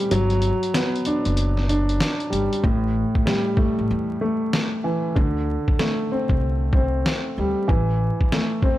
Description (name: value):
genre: hip hop, boom-bap hip-hop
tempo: 95 BPM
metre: 4/4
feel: swing 63% on 16ths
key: A dorian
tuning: A4 = 442 Hz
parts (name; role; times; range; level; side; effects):
- dark grand piano; accompaniment; 0.0-8.8 s; A2 to D4; -22 LUFS; equal; none
- trip hop sampler-style drum kit; drums; 0.0-8.8 s; hi-hat, kick drum, snare drum; -22 LUFS; equal; none
- upright bass; bass; 0.1-8.1 s; F#1 to E2; -24 LUFS; equal; tube saturation
room: little or no reverb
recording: dry, gritty hardware recording, transformer saturation, vinyl crackle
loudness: -19 LUFS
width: side -15 dB against mid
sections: 0.0-2.6 A section; 2.6-8.8 B section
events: kick muted 0.1-2.6; hi-hats muted 2.6-8.8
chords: 0.1 Gmaj7; 2.6 A5; 5.2 D7(no3); 7.7 Am